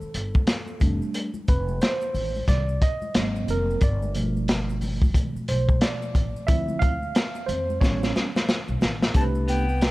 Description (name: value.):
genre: hip hop, jazz-hop.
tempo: 90 BPM.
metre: 4/4.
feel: swing 61% on 16ths.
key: unclear.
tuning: A4 = 440 Hz.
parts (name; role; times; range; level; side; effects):
tine electric piano; accompaniment; 0.0-9.7 s; B2 to F5; -28 LUFS; right 2 dB; medium stereo tremolo.
upright bass; bass; 0.0-9.9 s; F1 to F2; -28 LUFS; equal; none.
maracas and congas; percussion; 0.0-9.9 s; none; -39 LUFS; left 2 dB; none.
crunchy breakbeat drum kit; drums; 0.1-9.9 s; hi-hat, kick drum, snare drum; -23 LUFS; equal; none.
breathy jazz flute; melody; 9.2-9.9 s; G5 to A5; -30 LUFS; left 3 dB; none.
semi-hollow electric guitar; second line; 9.2-9.9 s; B3 to C4; -30 LUFS; left 1 dB; none.
room: light reverb.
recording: dark, warm production.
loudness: -21 LUFS.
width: side -19 dB against mid.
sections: 0.0-9.1 A section.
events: tine electric piano solo 0.0-9.1; drum fill 7.8-9.1.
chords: 0.0 N.C.; 0.8 F6; 3.1 G#9; 3.8 G9; 6.5 Dm9; 7.8 A9; 9.1 Cmaj7(no3).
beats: 0.48 | 1.15 1.81 2.48 3.15 | 3.81 4.48 5.15 5.81 | 6.48 7.15 7.81 8.48 | 9.15 9.81.